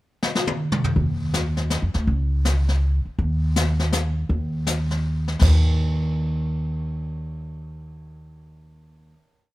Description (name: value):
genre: jazz, small-group swing and bop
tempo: 161 BPM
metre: 3/4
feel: swing 64% on 8ths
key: unclear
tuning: A4 = 441 Hz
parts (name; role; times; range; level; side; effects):
- jazz brush drum kit; drums; 0.2-5.8 s; brushed snare drum, crash cymbal, hi-hat, kick drum, snare drum, toms; -24 LUFS; left 1 dB; none
- upright bass; bass; 1.0-9.1 s; Db2 to F2; -21 LUFS; equal; none
room: little or no reverb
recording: none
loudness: -20 LUFS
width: side -17 dB against mid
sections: 0.0-1.0 pickup bar; 1.0-5.4 A section; 5.4-7.7 final note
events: drum fill 0.2-1.0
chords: none